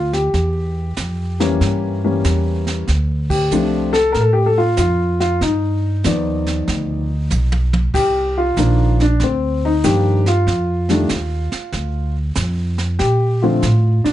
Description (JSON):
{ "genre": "jazz piano trio", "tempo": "95 BPM", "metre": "4/4", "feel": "swing 67% on 8ths", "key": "unclear", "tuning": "A4 = 440 Hz", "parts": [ { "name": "dark baby grand piano", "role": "melody", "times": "0.0-14.1 s", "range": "D3 to D5", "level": "-18 LUFS", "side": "left 2 dB", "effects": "none" }, { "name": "upright bass", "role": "bass", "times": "0.0-14.1 s", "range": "Bb1 to Bb2", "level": "-18 LUFS", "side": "right 1 dB", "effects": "none" }, { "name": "jazz brush drum kit", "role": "drums", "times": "0.1-14.1 s", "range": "brushed snare drum, crash cymbal, hi-hat, kick drum, snare drum, toms", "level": "-26 LUFS", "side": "right 3 dB", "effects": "none" } ], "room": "light reverb", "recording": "dark, warm production, nothing above 10.9 kHz", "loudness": "-15 LUFS", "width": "side -13 dB against mid", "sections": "0.0-14.1 A section", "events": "band accent 3.2-3.5; drum fill 7.3-7.9", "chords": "0.3 Edim7; 2.9 Dm7; 5.4 G7b13; 7.9 Cm11; 10.5 F7(no3); 13.0 Bbmaj7" }